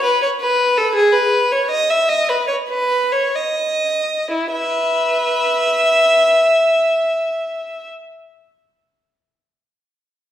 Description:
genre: classical, baroque-style suite movement for unaccompanied violin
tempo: 61-84 BPM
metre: 3/4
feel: rubato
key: E major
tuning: A4 = 440 Hz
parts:
  - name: clear violin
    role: solo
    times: 0.0-7.9 s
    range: E4 to E5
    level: -15 LUFS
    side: equal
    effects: none
room: wet recital hall reverb, RT60 1.4 s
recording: heard from further back in the room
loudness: -14 LUFS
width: side -11 dB against mid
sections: 0.0-4.3 A section; 4.3-9.9 B section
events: slowing down 0.0-4.3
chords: none

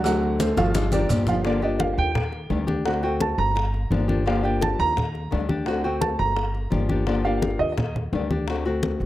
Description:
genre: latin, Cuban son and guajira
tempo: 171 BPM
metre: 4/4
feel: straight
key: G minor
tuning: A4 = 440 Hz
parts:
  - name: nylon-string guitar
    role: accompaniment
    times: 0.0-9.1 s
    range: D3 to G4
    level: -26 LUFS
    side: left 3 dB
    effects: none
  - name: dark grand piano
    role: arpeggios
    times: 0.0-7.9 s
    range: F3 to Bb5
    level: -25 LUFS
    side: right 4 dB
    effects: slapback echo
  - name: upright bass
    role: bass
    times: 0.0-9.1 s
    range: G1 to Eb2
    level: -26 LUFS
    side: equal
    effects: none
  - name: cowbell and bongos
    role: percussion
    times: 0.0-9.1 s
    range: none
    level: -31 LUFS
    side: left 6 dB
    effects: none
  - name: congas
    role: percussion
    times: 0.1-9.1 s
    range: none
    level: -28 LUFS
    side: left 1 dB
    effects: none
  - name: maracas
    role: percussion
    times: 0.1-1.4 s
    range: none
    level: -39 LUFS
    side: right 7 dB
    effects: none
room: little or no reverb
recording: dry, close 1970s-style studio recording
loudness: -21 LUFS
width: side -14 dB against mid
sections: 0.0-1.5 A section; 1.5-9.1 B section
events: drum fill 0.4-1.5; grand piano solo 1.5-9.1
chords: 0.1 D7; 0.8 Gm7; 2.2 Ebmaj7; 2.9 D7; 3.6 Gm7; 5.0 Ebmaj7; 5.7 D7; 6.4 Gm7; 7.8 Ebmaj7; 8.5 D7

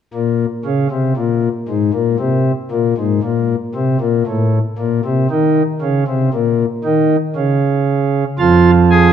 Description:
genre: classical, baroque-style 3-part fugue for pipe organ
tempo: 58 BPM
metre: 4/4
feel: straight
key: unclear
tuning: A4 = 440 Hz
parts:
  - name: pipe organ, cornet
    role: solo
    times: 0.1-9.1 s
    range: F2 to Ab4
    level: -13 LUFS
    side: equal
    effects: none
room: wet recital hall reverb, RT60 1.7 s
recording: none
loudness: -13 LUFS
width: side -8 dB against mid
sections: 0.1-9.1 A section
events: none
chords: 0.1 N.C.; 8.4 Fm

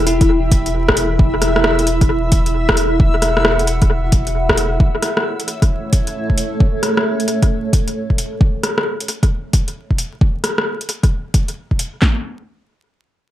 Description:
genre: future garage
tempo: 133 BPM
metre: 4/4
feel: swing 64% on 16ths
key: unclear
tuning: A4 = 440 Hz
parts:
  - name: granular cloud pad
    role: sustained chords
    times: 0.0-8.4 s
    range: A3 to B5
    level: -21 LUFS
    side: right 1 dB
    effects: built-in reverb, sidechain pumping
  - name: warm sub bass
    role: bass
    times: 0.0-4.8 s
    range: E1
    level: -20 LUFS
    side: equal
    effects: sidechain pumping
  - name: backwards swelling texture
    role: texture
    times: 0.0-4.8 s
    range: E5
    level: -27 LUFS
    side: equal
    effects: built-in reverb
  - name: bell-like FM electric piano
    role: melody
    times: 0.1-0.5 s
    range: E4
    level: -20 LUFS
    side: left 4 dB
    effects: chorus, tape echo
  - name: deep house drum kit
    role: drums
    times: 0.1-11.9 s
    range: hi-hat, rim click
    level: -18 LUFS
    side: left 1 dB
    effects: overdrive, analog delay
  - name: deep house drum kit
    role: drums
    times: 0.2-12.2 s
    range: handclaps, kick drum, snare drum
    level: -14 LUFS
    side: equal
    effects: overdrive
room: light reverb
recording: echo-heavy mix, vinyl crackle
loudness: -14 LUFS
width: side -13 dB against mid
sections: 0.0-12.0 A section; 12.0-13.3 B section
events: none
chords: 0.0 Em; 4.8 A; 8.4 N.C.

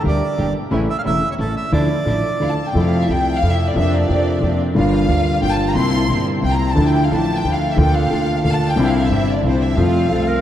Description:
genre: tango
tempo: 179 BPM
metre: 3/4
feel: rubato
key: F major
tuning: A4 = 440 Hz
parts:
  - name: bandoneon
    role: melody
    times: 0.0-2.5 s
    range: A4 to F5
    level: -25 LUFS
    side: right 4 dB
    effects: none
  - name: warm concert grand piano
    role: accompaniment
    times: 0.0-10.4 s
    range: E1 to G4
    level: -18 LUFS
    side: left 1 dB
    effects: none
  - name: clear studio string section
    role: stabs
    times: 0.0-10.4 s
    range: F3 to A4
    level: -28 LUFS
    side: right 3 dB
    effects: none
  - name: upright bass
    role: bass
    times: 0.1-10.4 s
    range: E1 to F2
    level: -22 LUFS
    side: right 1 dB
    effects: none
  - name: warm symphonic violin section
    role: second line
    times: 2.4-10.4 s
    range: C5 to C6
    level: -22 LUFS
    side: left 1 dB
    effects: none
  - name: mellow clarinet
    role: second line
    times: 10.1-10.4 s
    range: A4 to Bb4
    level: -22 LUFS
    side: right 4 dB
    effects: none
room: wet cathedral reverb, RT60 5.3 s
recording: in a vast, echoing space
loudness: -15 LUFS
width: side -11 dB against mid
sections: 0.0-2.7 A section; 2.7-10.4 B section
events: violin section solo 2.7-10.4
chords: 0.0 Gm; 0.7 A; 1.7 Dmadd9; 2.7 Fmaj7; 3.8 Bbadd9/F; 4.8 Gm7; 5.8 C7; 6.8 Dmadd9; 7.8 Bbmaj7/D; 8.8 Cadd9; 9.8 F

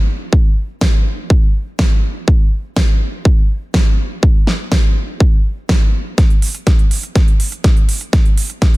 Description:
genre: house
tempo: 123 BPM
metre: 4/4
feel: straight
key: none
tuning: none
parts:
  - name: electronic kick drum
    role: drums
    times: 0.3-8.7 s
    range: none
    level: -12 LUFS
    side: equal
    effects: none
  - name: big-room dance drum kit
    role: drums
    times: 0.8-8.8 s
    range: hi-hat, snare drum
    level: -22 LUFS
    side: right 1 dB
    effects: sidechain pumping on hats
room: little or no reverb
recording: dense, heavily limited modern master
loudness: -12 LUFS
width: side -20 dB against mid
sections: 0.0-6.2 A section; 6.2-8.8 B section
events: build-up 6.2-8.8; drum fill 6.2-8.8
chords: none

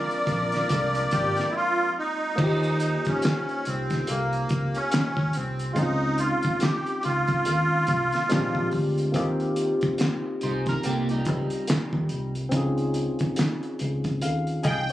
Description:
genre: R&B, neo-soul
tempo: 71 BPM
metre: 4/4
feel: swing 61% on 16ths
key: Eb mixolydian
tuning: A4 = 440 Hz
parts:
  - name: musette accordion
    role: melody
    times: 0.0-8.7, 14.7-14.9 s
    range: Bb3 to G5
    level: -26 LUFS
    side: right 1 dB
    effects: plate reverb
  - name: barky tine electric piano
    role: accompaniment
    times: 0.0-14.9 s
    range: Ab3 to F5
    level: -29 LUFS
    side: left 1 dB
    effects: overdrive, analog chorus
  - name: clear horn section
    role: stabs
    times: 0.0-1.9, 14.6-14.8 s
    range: F3 to Bb4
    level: -31 LUFS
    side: equal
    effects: none
  - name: cloth-damped thuddy drum kit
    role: drums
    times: 0.1-14.9 s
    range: crash cymbal, handclaps, hi-hat, kick drum, snare drum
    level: -28 LUFS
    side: equal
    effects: none
  - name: vintage muted fingered electric bass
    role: bass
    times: 0.3-14.9 s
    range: Ab1 to Eb2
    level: -28 LUFS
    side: equal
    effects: none
  - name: electric guitar at the edge of break-up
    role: second line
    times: 10.4-12.3 s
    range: G3 to C5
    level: -30 LUFS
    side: right 3 dB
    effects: analog chorus
room: light reverb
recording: recorded on a phone in the room, studio ambience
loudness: -23 LUFS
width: side -14 dB against mid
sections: 0.0-2.4 A section; 2.4-14.9 B section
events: drums muted 1.5-2.4; band accent 12.5-14.9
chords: 0.0 Bb9; 2.4 Eb6; 5.8 Dbmaj9; 8.3 Bb13; 9.1 Eb6; 12.5 Dbmaj9

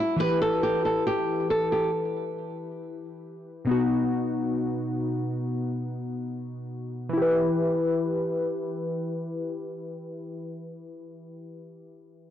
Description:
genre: hip hop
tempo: free time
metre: none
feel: none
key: E harmonic minor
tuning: A4 = 440 Hz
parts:
  - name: flamenco guitar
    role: melody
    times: 0.0-1.9 s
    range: E4 to B4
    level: -25 LUFS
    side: right 1 dB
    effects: low-pass filter, ping-pong delay
  - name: glassy digital keys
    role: accompaniment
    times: 0.0-12.3 s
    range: B2 to C5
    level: -27 LUFS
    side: left 1 dB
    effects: chorus, low-pass filter
room: moderate concert hall reverb, RT60 2.0 s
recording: blown-out, overdriven recording, overdrive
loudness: -25 LUFS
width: side -10 dB against mid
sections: 0.0-7.2 A section; 7.2-10.6 B section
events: filter sweep 0.0-7.2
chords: 0.2 Em; 3.7 B; 7.2 Em

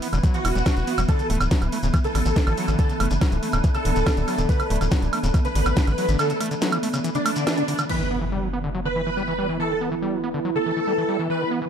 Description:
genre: psychedelic trance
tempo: 141 BPM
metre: 4/4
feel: straight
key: unclear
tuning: A4 = 440 Hz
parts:
  - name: swarming drone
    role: sustained chords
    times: 0.0-11.7 s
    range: E3 to B3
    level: -30 LUFS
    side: right 2 dB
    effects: built-in reverb, sidechain pumping
  - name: overdriven acid bass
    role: riff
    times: 0.0-11.7 s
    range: C#3 to F#4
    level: -29 LUFS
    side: equal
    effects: distortion, auto-pan, sidechain pumping, tape echo
  - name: techno drum kit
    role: drums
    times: 0.0-8.0 s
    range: crash cymbal, hi-hat, snare drum, woodblock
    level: -28 LUFS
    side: right 2 dB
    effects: overdrive
  - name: deep dark ambient pad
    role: texture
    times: 0.0-11.7 s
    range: D4 to B5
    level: -31 LUFS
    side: right 1 dB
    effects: chorus, built-in reverb, sidechain pumping
  - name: tight sequencer bass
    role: bass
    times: 0.1-6.2 s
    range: D1 to A1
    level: -23 LUFS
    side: equal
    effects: none
  - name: shekere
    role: percussion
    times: 0.1-7.9 s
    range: none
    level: -39 LUFS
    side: left 2 dB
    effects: none
  - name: electronic kick drum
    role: drums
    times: 0.2-5.9 s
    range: none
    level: -20 LUFS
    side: equal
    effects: overdrive
  - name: dense compressed supersaw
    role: melody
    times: 0.3-11.5 s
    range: D4 to B4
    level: -27 LUFS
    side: equal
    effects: phaser, sidechain pumping, tape echo
  - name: impact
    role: sound effects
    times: 7.9-9.6 s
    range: none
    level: -31 LUFS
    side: equal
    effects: none
room: light reverb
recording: none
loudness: -20 LUFS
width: side -8 dB against mid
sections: 0.0-7.9 A section; 7.9-11.7 B section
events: band accent 7.5; impact 7.9-9.6; filter sweep on synth drone 7.9-11.7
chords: 0.0 E5; 1.1 D5; 7.9 E5

